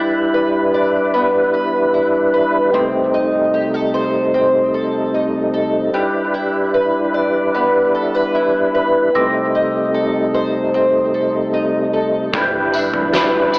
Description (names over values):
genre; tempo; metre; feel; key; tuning
dream pop; 75 BPM; 4/4; straight; G major; A4 = 440 Hz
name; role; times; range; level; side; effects
percussive tonewheel organ; sustained chords; 0.0-13.6 s; C3 to B4; -18 LUFS; equal; chorus vibrato, slow rotary speaker
picked twelve-string acoustic guitar; arpeggios; 0.0-13.6 s; C3 to D5; -16 LUFS; equal; wide subtle chorus, analog delay
semi-hollow electric guitar; accompaniment; 12.3-13.6 s; G3 to B4; -20 LUFS; equal; tremolo, ensemble chorus
vintage muted fingered electric bass; bass; 12.3-13.6 s; G1 to D2; -40 LUFS; equal; none
oversized low-tuned drum kit; drums; 12.3-13.6 s; kick drum, snare drum, tambourine, toms; -20 LUFS; equal; none
glassy synth bell; texture; 12.4-13.6 s; G6; -22 LUFS; equal; chorus, tremolo, analog delay
room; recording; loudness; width
light reverb, small room ambience; cassette tape, AM radio sound; -14 LUFS; side -26 dB against mid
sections
0.0-13.6 A section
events
none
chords
0.0 G6; 2.7 Cm6; 5.9 G6; 9.1 Cm6; 12.3 G6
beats
0.34 1.14 1.94 | 2.74 3.54 4.34 5.14 | 5.94 6.74 7.54 8.34 | 9.14 9.94 10.74 11.54 | 12.34 13.14